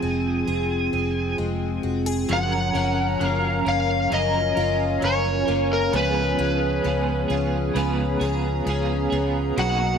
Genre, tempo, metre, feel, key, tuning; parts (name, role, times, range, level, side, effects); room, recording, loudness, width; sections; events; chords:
dream pop; 66 BPM; 4/4; straight; A4 = 440 Hz
overdriven slide guitar; melody; 0.0-10.0 s; A#4 to Ab5; -25 LUFS; left 1 dB; ping-pong delay
hollow soft pad; sustained chords; 0.0-10.0 s; C4 to A#5; -27 LUFS; right 2 dB; chorus
picked plugged-in twelve-string acoustic guitar; arpeggios; 0.0-10.0 s; F3 to Ab4; -28 LUFS; left 5 dB; analog chorus, ping-pong delay
vintage muted fingered electric bass; bass; 0.0-10.0 s; F1 to C#2; -26 LUFS; equal
electric guitar at the edge of break-up; accompaniment; 2.3-10.0 s; B2 to A#4; -29 LUFS; right 4 dB; tremolo, ensemble chorus
light reverb; -20 LUFS; side -7 dB against mid
0.0-2.3 A section; 2.3-10.0 B section
0.0 Fm; 2.3 F#maj7; 5.9 C#7